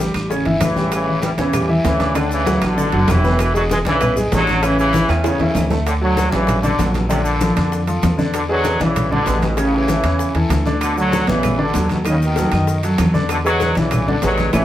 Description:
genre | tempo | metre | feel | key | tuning
latin, salsa | 194 BPM | 4/4 | straight | D major | A4 = 440 Hz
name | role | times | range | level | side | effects
brilliant trombone section | melody | 0.0-14.6 s | G2 to G#3 | -20 LUFS | equal | none
clear baby grand piano | accompaniment | 0.0-14.6 s | B2 to D6 | -19 LUFS | equal | none
upright bass | bass | 0.0-14.6 s | E1 to F#2 | -20 LUFS | equal | none
bongos | percussion | 0.0-14.6 s | none | -30 LUFS | left 5 dB | none
guiro | percussion | 0.0-14.6 s | none | -34 LUFS | left 1 dB | none
maracas | percussion | 0.0-14.6 s | none | -37 LUFS | left 4 dB | none
claves | percussion | 0.1-5.7, 10.8-14.6 s | none | -32 LUFS | right 6 dB | none
timbales | percussion | 0.1-14.6 s | none | -29 LUFS | right 4 dB | none
congas | percussion | 0.2-14.6 s | none | -25 LUFS | equal | none
room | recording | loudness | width
wet studio reverb, RT60 0.6 s | heard from further back in the room | -15 LUFS | side -12 dB against mid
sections
0.0-5.9 A section; 5.9-14.6 B section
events
drum fill 5.1-5.9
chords
0.3 A7; 2.2 D; 3.4 E7; 4.6 A; 5.9 Dmaj7; 7.1 Bbmaj7; 8.3 E7; 9.6 A; 10.8 D6; 12.1 B7/D#; 13.3 E7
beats
0.00 0.31 0.62 | 0.93 1.24 1.54 1.85 | 2.16 2.47 2.78 3.09 | 3.40 3.71 4.01 4.32 | 4.63 4.94 5.25 5.56 | 5.87 6.17 6.48 6.79 | 7.10 7.41 7.72 8.03 | 8.34 8.65 8.96 9.27 | 9.58 9.89 10.20 10.51 | 10.82 11.13 11.44 11.75 | 12.06 12.37 12.68 12.99 | 13.30 13.61 13.92 14.23 | 14.54

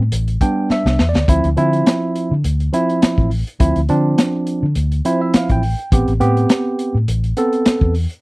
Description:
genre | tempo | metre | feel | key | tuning
straight-eighth soul blues | 104 BPM | 4/4 | swing 54% on 16ths | unclear | A4 = 441 Hz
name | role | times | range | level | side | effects
vintage muted fingered electric bass | bass | 0.0-8.1 s | A1 to D3 | -17 LUFS | equal | none
crunchy breakbeat drum kit | drums | 0.1-8.2 s | hi-hat, kick drum, snare drum | -16 LUFS | equal | none
tine electric piano | accompaniment | 0.4-7.9 s | F3 to G5 | -17 LUFS | right 1 dB | overdrive
room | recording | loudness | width
little or no reverb | dry, close 1970s-style studio recording | -14 LUFS | side -22 dB against mid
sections
0.0-8.2 A section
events
tine electric piano fill 0.1-1.3, 4.8-5.9; drum fill 0.7-1.3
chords
0.0 A7(no3); 1.3 Dm7; 5.9 Am7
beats
0.12 0.70 | 1.28 1.86 2.44 3.02 | 3.60 4.18 4.76 5.34 | 5.92 6.50 7.08 7.66

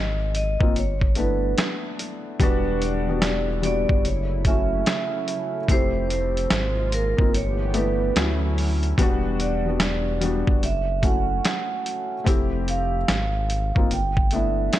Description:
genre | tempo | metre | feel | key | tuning
lo-fi hip hop | 73 BPM | 4/4 | swing 64% on 16ths | E dorian | A4 = 439 Hz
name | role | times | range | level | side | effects
vibraphone with medium mallets | melody | 0.0-14.8 s | A#4 to G5 | -27 LUFS | right 4 dB | none
round analog bass | bass | 0.0-14.7 s | E1 to D2 | -26 LUFS | equal | none
boom bap sampler-style drum kit | drums | 0.3-14.8 s | hi-hat, kick drum, snare drum | -23 LUFS | equal | vintage 12-bit sampler grit
felt-muted upright piano | accompaniment | 0.6-14.8 s | F#3 to G4 | -28 LUFS | left 4 dB | cassette tape
warm analog pad | sustained chords | 2.4-9.0 s | C3 to G4 | -34 LUFS | right 1 dB | chorus
room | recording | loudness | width
light reverb, digital ambience | dark, warm production | -20 LUFS | side -13 dB against mid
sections
0.0-9.0 A section; 9.0-14.8 B section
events
kick muted 7.3-9.0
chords
0.0 G#69; 0.8 G69; 2.4 Em7; 4.0 F#m7; 5.7 Fmaj7; 6.5 G#69; 7.3 G69; 8.2 Dmaj9; 9.0 Em7; 10.6 F#m7; 12.3 Fmaj7; 13.1 G#69; 13.9 G69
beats
0.75 1.58 | 2.40 3.22 4.04 4.86 | 5.69 6.51 7.33 8.15 | 8.97 9.79 10.62 11.44 | 12.26 13.08 13.90 14.73

